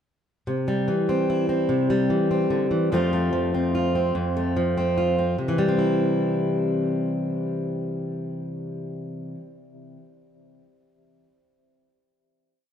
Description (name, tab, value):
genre	folk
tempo	146 BPM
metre	3/4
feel	straight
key	C major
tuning	A4 = 442 Hz
part	fingerpicked plugged-in steel-string acoustic guitar	solo	0.5-9.5 s	F2 to F4	-22 LUFS	equal	tape echo
room	wet large studio reverb, RT60 1.3 s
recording	none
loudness	-21 LUFS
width	side -8 dB against mid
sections	0.5-5.4 verse; 5.4-7.8 final chord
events	none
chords	0.5 C; 2.9 F; 5.4 C